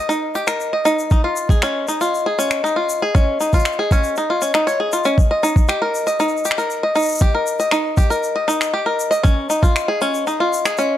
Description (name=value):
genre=folktronica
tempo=118 BPM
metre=4/4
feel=straight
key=Eb mixolydian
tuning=A4 = 440 Hz
part: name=vibraphone with soft mallets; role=second line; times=0.0-11.0 s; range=Eb5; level=-23 LUFS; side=left 2 dB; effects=ping-pong delay
part: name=bluegrass banjo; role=arpeggios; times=0.0-11.0 s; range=Db4 to Eb5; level=-19 LUFS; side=equal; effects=ping-pong delay
part: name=shaker and finger snaps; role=drums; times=0.1-10.9 s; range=none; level=-25 LUFS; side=left 2 dB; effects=none
part: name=electronic kick drum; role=drums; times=1.1-9.7 s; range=none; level=-14 LUFS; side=equal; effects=overdrive
room=light reverb, small room ambience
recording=dark, warm production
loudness=-16 LUFS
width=side -12 dB against mid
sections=0.0-11.0 A section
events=none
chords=0.0 Eb5; 1.1 Dbadd9; 5.2 Eb; 9.2 Dbadd9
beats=0.10 0.60 | 1.11 1.62 2.13 2.64 | 3.15 3.65 4.16 4.67 | 5.18 5.69 6.20 6.71 | 7.21 7.72 8.23 8.74 | 9.25 9.76 10.27 10.77